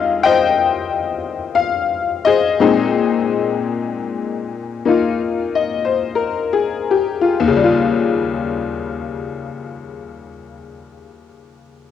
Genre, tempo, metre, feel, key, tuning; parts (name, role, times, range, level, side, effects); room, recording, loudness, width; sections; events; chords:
solo jazz; 43-62 BPM; 4/4; swing 67% on 8ths, rubato; Eb mixolydian; A4 = 438 Hz
tack piano; solo; 0.0-11.9 s; Eb2 to G5; -16 LUFS; left 6 dB; cassette tape
light reverb; home recording on cassette; -16 LUFS; side -9 dB against mid
0.0-7.5 A section; 7.5-11.9 B section
slowing down 0.0-7.5
0.0 Fm9; 2.6 Bb9sus4; 7.5 Eb9